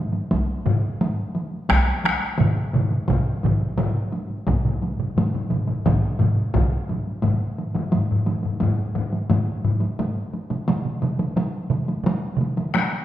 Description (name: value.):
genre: japanese traditional, taiko drum ensemble.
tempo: 87 BPM.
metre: 4/4.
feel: straight.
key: none.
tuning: none.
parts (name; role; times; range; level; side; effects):
taiko ensemble; percussion; 0.1-12.9 s; none; -25 LUFS; right 1 dB; none.
taiko ensemble; percussion; 0.3-6.7 s; none; -25 LUFS; equal; none.
taiko ensemble; percussion; 0.7-12.9 s; none; -23 LUFS; left 2 dB; none.
taiko ensemble; percussion; 0.7-12.5 s; none; -26 LUFS; right 3 dB; none.
room: wet recital hall reverb, RT60 1.7 s.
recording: recorded in a church or concert hall.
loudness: -20 LUFS.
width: side -13 dB against mid.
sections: 0.0-7.2 A section; 7.2-13.0 B section.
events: none.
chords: none.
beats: 0.32 1.02 | 1.71 2.40 3.10 3.79 | 4.48 5.17 5.86 6.55 | 7.24 7.93 8.62 9.30 | 9.99 10.68 11.36 12.05 | 12.73.